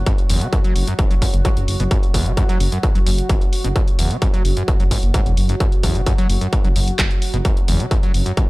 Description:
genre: driving peak-time techno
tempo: 130 BPM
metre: 4/4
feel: straight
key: unclear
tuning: A4 = 440 Hz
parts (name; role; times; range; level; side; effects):
- dark detuned saw bass; bass; 0.0-8.4 s; E1 to F#1; -20 LUFS; equal; sidechain pumping
- analog drone; drone; 0.0-8.5 s; F#3 to F#4; -29 LUFS; right 1 dB; chorus, sidechain pumping
- overdriven acid bass; riff; 0.1-8.3 s; E2 to F#3; -24 LUFS; equal; distortion, analog chorus, sidechain pumping, analog delay
- electronic kick drum; drums; 0.1-8.5 s; none; -17 LUFS; equal; distortion
- punchy analog drum machine; drums; 0.1-8.5 s; handclaps, hi-hat; -26 LUFS; equal; sidechain pumping on hats, sidechain pumping on cymbals
room: little or no reverb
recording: dry, gritty hardware recording, transformer saturation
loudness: -15 LUFS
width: side -21 dB against mid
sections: 0.0-8.5 A section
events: none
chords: none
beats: | 0.07 0.53 0.99 1.45 | 1.91 2.37 2.83 3.30 | 3.76 4.22 4.68 5.14 | 5.60 6.07 6.53 6.99 | 7.45 7.91 8.37

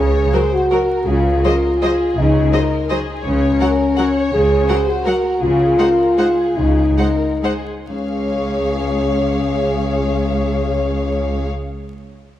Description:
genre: classical, orchestral ballroom waltz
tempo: 121-178 BPM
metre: 3/4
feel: rubato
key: Db major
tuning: A4 = 439 Hz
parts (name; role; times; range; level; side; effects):
- warm studio violin section; melody; 0.0-11.5 s; Ab4 to F5; -27 LUFS; left 4 dB; none
- dark French horn section; sustained chords; 0.0-11.5 s; Db4 to Ab4; -17 LUFS; left 1 dB; none
- bright studio double bass section; bass; 0.0-11.5 s; Db2; -22 LUFS; right 1 dB; none
- rich studio cello section; bass; 0.0-11.5 s; Db2 to Db3; -24 LUFS; right 1 dB; none
- clear studio violin section; second line; 0.3-11.5 s; Bb4 to Gb5; -26 LUFS; left 2 dB; none
- rich studio viola section; accompaniment; 0.3-11.5 s; Gb3 to Ab4; -25 LUFS; right 1 dB; none
room: moderate scoring stage reverb, RT60 2.0 s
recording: dark, warm production, vinyl crackle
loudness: -14 LUFS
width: side -12 dB against mid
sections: 0.0-7.9 A section; 7.9-10.7 B section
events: slowing down 4.9-7.9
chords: 0.0 Gb/Db; 1.1 Ab7(no3)/Db; 3.3 Gb/Db; 5.4 Ab5/Db; 7.9 Db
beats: 0.33 0.71 | 1.07 1.44 1.82 | 2.17 2.53 2.90 | 3.25 3.61 3.98 | 4.33 4.69 5.06 | 5.42 5.79 6.18 | 6.57 6.98 7.43 | 7.89 8.36 8.85 | 9.30 9.76 10.24

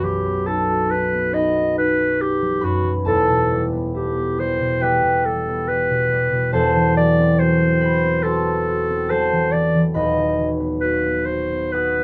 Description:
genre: classical, romantic duo for clarinet and harp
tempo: 70 BPM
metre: 4/4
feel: rubato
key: E minor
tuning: A4 = 439 Hz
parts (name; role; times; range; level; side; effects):
- mellow clarinet; melody; 0.0-12.0 s; F#4 to D#5; -22 LUFS; equal; none
- concert harp; accompaniment; 0.0-12.0 s; D#1 to F#6; -22 LUFS; equal; none
room: light reverb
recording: close, detailed microphones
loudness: -19 LUFS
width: mono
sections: 0.0-12.0 A section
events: none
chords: 0.0 B; 3.1 Em; 6.5 F#m7b5/E; 9.9 B/D#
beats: 0.46 1.34 2.20 | 3.06 3.93 4.80 5.66 | 6.52 7.38 8.23 9.09 | 9.94 10.79 11.71

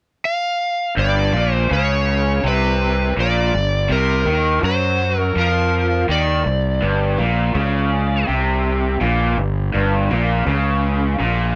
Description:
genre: rock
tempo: 82 BPM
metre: 4/4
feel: straight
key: unclear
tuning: A4 = 440 Hz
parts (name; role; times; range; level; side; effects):
- overdriven slide guitar; melody; 0.3-8.3 s; Bb4 to F5; -23 LUFS; equal; none
- raw garage guitar; riff; 1.0-11.6 s; G2 to Gb3; -23 LUFS; equal; overdrive
- fuzz fingered electric bass; bass; 1.0-11.6 s; G1 to Gb2; -22 LUFS; equal; overdrive
room: light reverb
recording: none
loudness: -18 LUFS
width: mono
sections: 1.0-11.6 A section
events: none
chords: 0.0 N.C.; 1.0 G; 3.9 Cm9b5; 6.8 G5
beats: 0.24 | 0.97 1.70 2.43 3.17 | 3.90 4.63 5.36 6.09 | 6.82 7.55 8.28 9.01 | 9.74 10.46 11.19

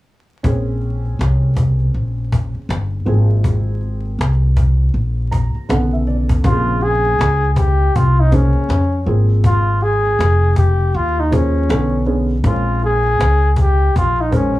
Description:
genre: hip hop, jazz-hop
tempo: 80 BPM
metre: 4/4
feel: swing 62% on 16ths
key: Bb dorian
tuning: A4 = 439 Hz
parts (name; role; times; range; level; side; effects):
- dark upright piano; accompaniment; 0.4-14.6 s; C#3 to Bb5; -23 LUFS; right 2 dB; plate reverb
- upright bass; bass; 0.4-14.6 s; F1 to F2; -16 LUFS; equal; none
- cajon; drums; 0.4-14.6 s; none; -19 LUFS; left 1 dB; none
- breathy flugelhorn; melody; 6.5-14.6 s; Db4 to Ab4; -18 LUFS; left 1 dB; plate reverb
room: light reverb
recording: vinyl crackle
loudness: -14 LUFS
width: side -16 dB against mid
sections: 0.4-6.4 A section; 6.4-14.6 B section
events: upright piano fill 4.9-6.4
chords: 0.4 Bbm9; 3.1 Ab69; 5.7 Bm9; 6.4 Bbm9; 9.1 Ab69; 11.7 Bm9; 12.4 Bbm9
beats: | 0.44 1.19 1.94 2.69 | 3.44 4.19 4.94 5.69 | 6.44 7.19 7.94 8.69 | 9.44 10.19 10.94 11.69 | 12.44 13.19 13.94

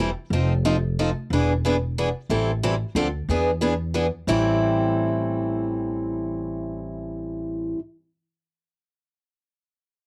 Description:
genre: acoustic string swing (jazz manouche)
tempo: 181 BPM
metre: 3/4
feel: swing 61% on 8ths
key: A minor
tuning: A4 = 439 Hz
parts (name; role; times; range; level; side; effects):
- picked steel-string acoustic guitar; accompaniment; 0.0-7.8 s; A2 to A4; -26 LUFS; equal; cassette tape
- upright bass; bass; 0.0-7.7 s; E1 to E2; -29 LUFS; equal; none
room: light reverb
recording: home recording on cassette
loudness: -24 LUFS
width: mono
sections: 0.0-4.3 A section; 4.3-6.3 B section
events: none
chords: 0.3 F7; 1.3 E7; 2.3 Am7; 3.0 Dm7; 3.3 E7; 4.3 Am7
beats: | 0.31 0.64 0.97 | 1.30 1.63 1.96 | 2.29 2.63 2.96 | 3.29 3.62 3.95 | 4.28 4.61 4.94 | 5.28 5.61 5.94

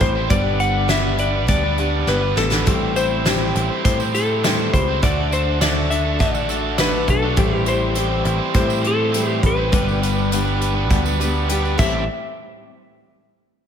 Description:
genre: folk rock and heartland rock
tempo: 102 BPM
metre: 4/4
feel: straight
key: A dorian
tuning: A4 = 440 Hz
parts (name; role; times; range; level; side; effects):
- clean lap steel guitar; melody; 0.0-12.1 s; A4 to F#5; -23 LUFS; left 3 dB; slapback echo
- picked steel-string acoustic guitar; accompaniment; 0.0-12.0 s; G2 to G4; -25 LUFS; left 4 dB; slapback echo
- overdriven electric guitar; riff; 0.0-12.0 s; A2 to C5; -24 LUFS; right 4 dB; slapback echo
- picked electric bass; bass; 0.0-12.1 s; G1 to A2; -22 LUFS; right 1 dB; none
- soft brush drum kit; drums; 0.0-11.9 s; crash cymbal, hi-hat, kick drum, snare drum; -21 LUFS; equal; none
- tambourine; percussion; 3.0-12.1 s; none; -37 LUFS; right 14 dB; none
room: moderate lush hall reverb, RT60 1.8 s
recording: big arena sound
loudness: -16 LUFS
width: side -8 dB against mid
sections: 0.0-12.1 A section; 12.1-13.7 B section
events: drum fill 2.1-2.7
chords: 0.3 G; 2.7 Am7; 5.0 D; 7.4 Am7; 9.7 G; 11.8 Am7; 12.1 N.C.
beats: | 0.31 0.90 1.49 2.08 | 2.67 3.25 3.84 4.43 | 5.02 5.61 6.20 6.79 | 7.38 7.96 8.55 9.14 | 9.73 10.32 10.91 11.50

